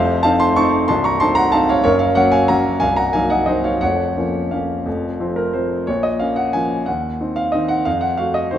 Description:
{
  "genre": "classical, piano waltz",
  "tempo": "166-197 BPM",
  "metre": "3/4",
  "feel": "rubato",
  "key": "Bb minor",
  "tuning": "A4 = 441 Hz",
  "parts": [
    { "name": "warm grand piano", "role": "solo", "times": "0.0-8.6 s", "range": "C1 to Db6", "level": "-15 LUFS", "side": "equal", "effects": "none" }
  ],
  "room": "moderate concert hall reverb, RT60 1.9 s",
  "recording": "none",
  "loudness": "-15 LUFS",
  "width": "side -10 dB against mid",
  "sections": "0.0-5.9 A section; 5.9-8.6 B section",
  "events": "none",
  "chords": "0.0 F7; 1.8 Gb; 2.8 Cm7b5; 3.8 Bbm/F; 4.9 F; 5.9 Bbm; 6.9 Cdim/Eb; 7.9 F7b9"
}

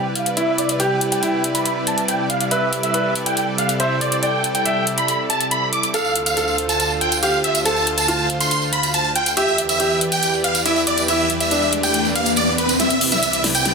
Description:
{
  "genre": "uplifting trance",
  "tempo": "140 BPM",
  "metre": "4/4",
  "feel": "straight",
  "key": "C major",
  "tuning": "A4 = 440 Hz",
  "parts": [
    { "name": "big supersaw lead", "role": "melody", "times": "0.0-13.7 s", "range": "B4 to D6", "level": "-20 LUFS", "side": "right 1 dB", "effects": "low-pass filter, tape echo" },
    { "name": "clear baby grand piano", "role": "second line", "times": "0.0-12.7 s", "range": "D4 to E5", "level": "-24 LUFS", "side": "equal", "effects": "dub echo" },
    { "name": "supersaw pad", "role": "sustained chords", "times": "0.0-13.7 s", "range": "C2 to F5", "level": "-24 LUFS", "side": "equal", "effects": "none" },
    { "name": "big-room dance drum kit", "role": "drums", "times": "0.2-13.7 s", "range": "hi-hat, snare drum", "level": "-22 LUFS", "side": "left 1 dB", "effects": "high-pass filter on hats, high-pass filter on snare, high-pass filter on room" },
    { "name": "tambourine", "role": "percussion", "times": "5.9-13.7 s", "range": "none", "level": "-26 LUFS", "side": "right 4 dB", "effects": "none" },
    { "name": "riser", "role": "sound effects", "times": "11.0-13.7 s", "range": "none", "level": "-24 LUFS", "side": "left 2 dB", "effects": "none" }
  ],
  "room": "light reverb",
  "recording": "dense, heavily limited modern master",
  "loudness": "-16 LUFS",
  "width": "side -4 dB against mid",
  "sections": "0.0-12.8 A section",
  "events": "filter sweep on supersaw synth 0.0-12.8; riser 11.0-12.8, 12.8-13.7; drum fill 12.8-13.7",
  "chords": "0.0 Cmaj7; 5.9 Dm7; 9.4 Em7; 12.8 Cmaj7"
}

